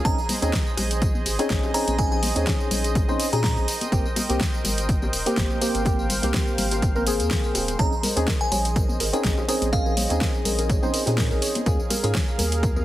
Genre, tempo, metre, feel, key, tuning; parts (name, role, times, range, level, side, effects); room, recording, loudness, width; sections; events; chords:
deep house; 124 BPM; 4/4; swing 55% on 16ths; Bb dorian; A4 = 440 Hz
warm analog pad; sustained chords; 0.0-12.8 s; Ab4 to G5; -32 LUFS; right 2 dB; chorus, sidechain pumping
percussive organ stab; stabs; 0.0-12.2 s; Bb3 to C5; -27 LUFS; equal; lush chorus, sidechain pumping, dub echo
glassy synth bell; melody; 0.1-3.5, 7.8-10.1 s; F5 to Bb5; -30 LUFS; right 1 dB; chorus, digital delay
round analog bass; bass; 0.1-12.8 s; Eb1 to Bb2; -27 LUFS; equal; sidechain pumping
deep house drum kit; drums; 0.1-12.8 s; hi-hat, snare drum, tambourine; -28 LUFS; equal; overdrive, studio reverb
electronic kick drum; drums; 0.1-12.7 s; -24 LUFS; equal; overdrive, studio reverb
congas and bongos; percussion; 0.3-12.8 s; -32 LUFS; left 2 dB
soft round pluck; arpeggios; 7.8-12.8 s; Bb4 to Db5; -33 LUFS; right 2 dB; chorus, sidechain pumping, digital delay
light reverb, digital ambience; heavily compressed radio sound; -20 LUFS; side -14 dB against mid
0.0-12.8 A section
0.1 Bbm11; 3.7 Abmaj7; 7.8 Bbm11; 11.7 Eb9sus4